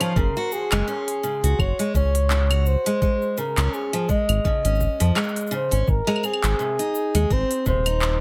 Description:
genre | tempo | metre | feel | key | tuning
folktronica | 84 BPM | 4/4 | swing 56% on 16ths | unclear | A4 = 440 Hz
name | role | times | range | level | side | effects
breathy flugelhorn | melody | 0.0-8.2 s | Ab4 to Eb5 | -28 LUFS | equal | tape echo
picked steel-string acoustic guitar | arpeggios | 0.0-8.2 s | C3 to Gb4 | -29 LUFS | equal | tape echo
organic electronic drum kit | drums | 0.0-8.2 s | claves, handclaps, hi-hat, shaker | -30 LUFS | equal | none
round analog bass | bass | 0.2-8.2 s | Eb1 to F2 | -23 LUFS | equal | none
electronic kick drum | drums | 0.2-7.8 s | none | -26 LUFS | equal | none
room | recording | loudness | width
light reverb | none | -22 LUFS | mono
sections
0.2-8.2 A section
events
none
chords
0.2 Gbsus2; 3.0 Dbadd9; 5.9 Ab

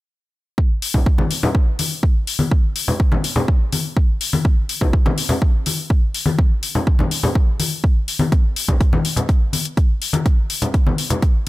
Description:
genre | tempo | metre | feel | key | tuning
house | 124 BPM | 4/4 | straight | none | none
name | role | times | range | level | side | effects
electronic kick drum | drums | 0.6-11.3 s | none | -15 LUFS | equal | overdrive
electronic hi-hat | drums | 0.8-11.3 s | none | -23 LUFS | left 4 dB | overdrive, sidechain pumping on hats
congas | percussion | 0.9-11.2 s | none | -21 LUFS | left 2 dB | sidechain pumping on perc
room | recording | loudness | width
small room ambience | none | -16 LUFS | side -18 dB against mid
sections
0.6-11.5 A section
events
none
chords
none

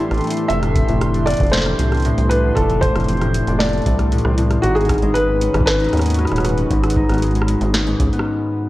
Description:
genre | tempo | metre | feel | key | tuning
IDM | 116 BPM | 4/4 | straight | unclear | A4 = 440 Hz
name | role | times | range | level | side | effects
warm analog pad | sustained chords | 0.0-8.3 s | D#3 to C6 | -25 LUFS | right 1 dB | chorus, sidechain pumping
concert harp | arpeggios | 0.0-8.7 s | G#2 to A4 | -21 LUFS | left 2 dB | tape echo
rubbery square bass | bass | 0.1-8.1 s | D#1 to D#2 | -19 LUFS | equal | none
booming analog drum machine | drums | 0.1-8.3 s | hi-hat, rim click, snare drum | -25 LUFS | right 1 dB | none
felt-muted upright piano | melody | 0.5-8.2 s | F#4 to E5 | -21 LUFS | equal | tape echo
electronic kick drum | drums | 0.8-8.1 s | none | -21 LUFS | equal | overdrive
room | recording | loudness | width
light reverb, digital ambience | worn, warbling old tape, cassette tape, warbly pitch drift | -15 LUFS | side -17 dB against mid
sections
0.0-8.7 A section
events
break 8.3-8.7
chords
0.5 F6; 4.6 G#m7

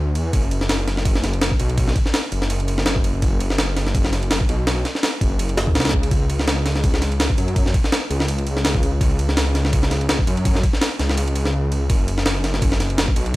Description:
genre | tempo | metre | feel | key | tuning
drum and bass, jungle | 166 BPM | 4/4 | swing 55% on 16ths | unclear | A4 = 440 Hz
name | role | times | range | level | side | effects
detuned saw bass | bass | 0.0-13.4 s | F#1 to F#2 | -21 LUFS | equal | tube saturation
breakbeat sampler-style drum kit | drums | 0.2-13.3 s | kick drum, ride cymbal, snare drum | -19 LUFS | equal | studio reverb
room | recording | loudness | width
little or no reverb | dry, gritty hardware recording, transformer saturation | -17 LUFS | side -18 dB against mid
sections
0.0-13.4 A section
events
none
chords
none

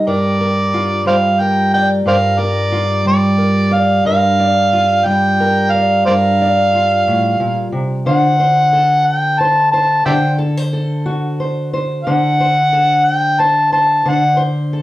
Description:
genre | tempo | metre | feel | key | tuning
acoustic country blues, solo or duo | 60 BPM (dotted quarters) | 12/8 | straight | G minor | A4 = 440 Hz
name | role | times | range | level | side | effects
fingerpicked steel-string acoustic guitar | accompaniment | 0.0-14.8 s | G2 to D5 | -16 LUFS | equal | none
overdriven harmonica | melody | 0.1-14.4 s | C5 to A5 | -13 LUFS | equal | none
room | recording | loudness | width
wet studio reverb, RT60 0.5 s | heard from further back in the room | -12 LUFS | side -16 dB against mid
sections
0.0-14.8 A section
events
none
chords
0.1 Gm7; 8.1 D7#9

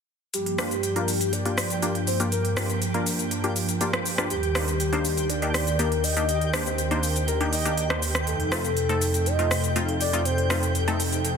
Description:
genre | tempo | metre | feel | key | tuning
progressive house | 121 BPM | 4/4 | straight | G minor | A4 = 440 Hz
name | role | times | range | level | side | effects
soft octave-layered synth lead | melody | 0.3-10.8 s | G4 to Eb5 | -29 LUFS | equal | chorus, phaser, tape echo
warm analog pad | sustained chords | 0.3-11.4 s | Eb2 to A5 | -27 LUFS | right 1 dB | chorus
big-room dance drum kit | drums | 0.3-11.3 s | hi-hat, rim click, shaker | -28 LUFS | equal | overdrive
twinkling granular texture | texture | 0.7-11.4 s | G4 to G5 | -35 LUFS | right 2 dB | built-in reverb
supersaw stab | stabs | 0.6-11.3 s | A3 to C5 | -29 LUFS | left 2 dB | low-pass filter, tape echo
room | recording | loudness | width
light reverb | dense, heavily limited modern master | -22 LUFS | side -6 dB against mid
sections
0.3-11.4 A section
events
filter sweep on supersaw synth 0.3-11.4; filter sweep on analog synth pad 0.3-11.4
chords
0.3 Gm7; 4.3 Ebmaj7; 8.3 F7

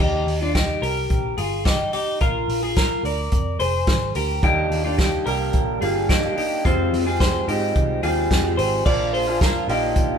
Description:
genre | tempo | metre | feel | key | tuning
jangly indie pop | 108 BPM | 4/4 | straight | Eb major | A4 = 436 Hz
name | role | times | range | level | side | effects
twelve-string electric guitar | arpeggios | 0.0-10.2 s | C4 to D5 | -22 LUFS | left 2 dB | none
vintage muted picked electric bass | bass | 0.0-10.2 s | F1 to Ab2 | -27 LUFS | equal | none
vintage drum kit | drums | 0.0-10.1 s | crash cymbal, hi-hat, kick drum, snare drum | -23 LUFS | equal | none
electric guitar through a small old amp | accompaniment | 4.4-10.2 s | F2 to G4 | -25 LUFS | right 5 dB | none
room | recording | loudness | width
moderate large studio reverb, RT60 1.1 s | band playing live in one room | -18 LUFS | side -7 dB against mid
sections
0.0-8.9 A section; 8.9-10.2 B section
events
none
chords
0.0 Eb; 2.2 Bbadd9; 4.4 Ebmaj7; 6.6 Fmadd9; 8.9 Bb

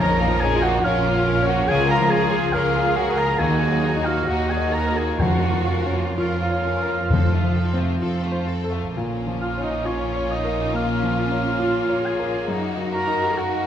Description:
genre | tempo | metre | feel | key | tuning
classical, romantic movement for piano and orchestra | 61-71 BPM | 4/4 | rubato | Bb minor | A4 = 442 Hz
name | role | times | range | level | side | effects
clear concert grand piano | melody | 0.0-13.7 s | Bb1 to F5 | -24 LUFS | left 1 dB | none
rich studio violin section | melody | 0.0-13.7 s | Eb4 to Bb4 | -32 LUFS | left 7 dB | none
clear studio violin section | second line | 0.0-13.7 s | A3 to Eb4 | -31 LUFS | left 3 dB | none
warm oboe | second line | 0.0-13.7 s | Db5 to Bb5 | -25 LUFS | right 1 dB | none
rich studio viola section | accompaniment | 0.0-13.7 s | Db4 to Bb4 | -28 LUFS | right 1 dB | none
warm studio cello section | bass | 0.0-13.7 s | Db4 to Bb4 | -30 LUFS | right 1 dB | none
warm studio double bass section | bass | 0.0-13.7 s | Bb1 to Gb2 | -27 LUFS | right 4 dB | none
timpani | percussion | 5.2-8.4 s | F2 | -25 LUFS | left 2 dB | none
room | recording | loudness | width
moderate concert hall reverb, RT60 2.0 s | none | -19 LUFS | side -9 dB against mid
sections
0.0-13.7 A section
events
none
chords
0.0 Bbm; 1.7 Bbm/Db; 3.4 Ebm; 5.2 Bbm/F; 7.1 F; 8.9 Bbm; 12.5 Ebm/Gb

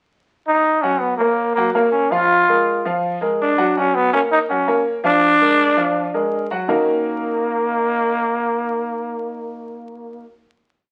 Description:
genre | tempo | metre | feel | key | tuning
latin | 164 BPM | 4/4 | straight | Eb minor | A4 = 440 Hz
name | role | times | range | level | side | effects
growling trombone | melody | 0.5-10.2 s | Bb3 to F4 | -20 LUFS | equal | none
clear grand piano | accompaniment | 0.8-10.2 s | Eb3 to Gb5 | -23 LUFS | equal | none
room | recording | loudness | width
wet studio reverb, RT60 0.6 s | very old 78 rpm record, vinyl crackle | -18 LUFS | mono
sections
0.0-0.8 pickup bar; 0.8-6.7 montuno (vamp); 6.7-9.6 final chord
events
none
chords
0.0 N.C.; 0.8 Gbmaj7; 2.3 Bb7; 3.8 Bmaj7sus2 (rootless); 5.2 Bb7; 6.7 Ebm7

